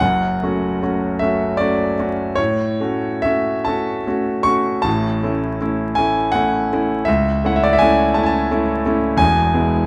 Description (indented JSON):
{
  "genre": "classical, romantic nocturne for solo piano",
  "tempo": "44-58 BPM (dotted quarters)",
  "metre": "12/8",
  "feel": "rubato",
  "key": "F# minor",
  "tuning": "A4 = 440 Hz",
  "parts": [
    { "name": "clear grand piano", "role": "solo", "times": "0.0-9.9 s", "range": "E1 to C#6", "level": "-18 LUFS", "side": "equal", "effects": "none" }
  ],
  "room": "moderate recital hall reverb, RT60 1.5 s",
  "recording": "close, detailed microphones, vinyl crackle",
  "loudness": "-18 LUFS",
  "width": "mono",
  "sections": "0.0-9.9 A section",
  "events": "none",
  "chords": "0.0 F#m; 2.4 F#m/A; 4.9 A; 7.1 A/C#; 9.2 E",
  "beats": "| 0.02 1.22 2.38 3.68 | 4.85 5.97 7.07 8.16 | 9.20"
}